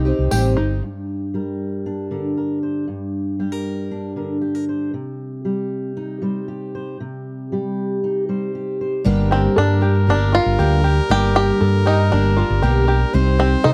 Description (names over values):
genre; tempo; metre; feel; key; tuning
indie folk with a building arrangement; 117 BPM; 4/4; straight; G minor; A4 = 441 Hz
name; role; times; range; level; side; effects
bluegrass banjo; melody; 0.0-0.3, 9.3-13.7 s; C4 to G4; -22 LUFS; equal; none
clear trumpet; second line; 0.0-0.6, 9.0-13.7 s; G4 to C5; -28 LUFS; equal; none
picked twelve-string acoustic guitar; accompaniment; 0.0-0.8, 9.0-13.7 s; G2 to G4; -24 LUFS; equal; none
open-back banjo; arpeggios; 0.0-0.8, 9.3-13.7 s; Eb4 to A4; -27 LUFS; equal; none
fingered electric bass; bass; 0.0-0.8, 9.1-13.7 s; G1 to C3; -19 LUFS; equal; none
fingerpicked steel-string acoustic guitar; accompaniment; 0.8-9.0 s; G2 to C5; -25 LUFS; equal; none
room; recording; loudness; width
small room ambience; dry, close 1970s-style studio recording; -20 LUFS; mono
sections
0.8-9.1 A section; 9.1-13.7 B section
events
none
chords
0.0 Cm; 0.8 Gm; 4.9 Cm; 9.1 Gm; 13.1 Cm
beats
0.31 | 0.82 1.33 1.85 2.36 | 2.88 3.39 3.91 4.42 | 4.94 5.45 5.97 6.48 | 7.00 7.51 8.03 8.54 | 9.05 9.56 10.07 10.59 | 11.10 11.61 12.12 12.62 | 13.13 13.64